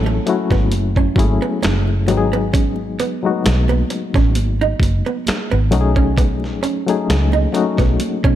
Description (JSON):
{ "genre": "R&B, neo-soul", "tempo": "66 BPM", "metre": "4/4", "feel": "swing 54% on 16ths", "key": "unclear", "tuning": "A4 = 439 Hz", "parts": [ { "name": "barky reed electric piano", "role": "accompaniment", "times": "0.0-8.4 s", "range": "F#3 to A4", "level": "-20 LUFS", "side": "left 6 dB", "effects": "overdrive, fast tremolo" }, { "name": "vintage muted fingered electric bass", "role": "bass", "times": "0.0-8.4 s", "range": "F#1 to B2", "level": "-18 LUFS", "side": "equal", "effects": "none" }, { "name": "congas", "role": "percussion", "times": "0.0-8.2 s", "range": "none", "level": "-30 LUFS", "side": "right 8 dB", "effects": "none" }, { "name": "archtop guitar, miked and amplified", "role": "second line", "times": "0.1-8.4 s", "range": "A3 to D#4", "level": "-23 LUFS", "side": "right 7 dB", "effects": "none" }, { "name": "dusty soul sampler-style drum kit", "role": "drums", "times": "0.3-8.4 s", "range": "finger snaps, hi-hat, kick drum, snare drum", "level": "-19 LUFS", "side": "equal", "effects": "none" } ], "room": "light reverb", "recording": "none", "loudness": "-15 LUFS", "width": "side -12 dB against mid", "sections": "0.0-8.4 A section", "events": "none", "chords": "0.0 F#m9; 2.1 G#m7; 5.7 B13", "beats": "0.72 1.63 | 2.54 3.45 4.36 5.26 | 6.17 7.08 7.99" }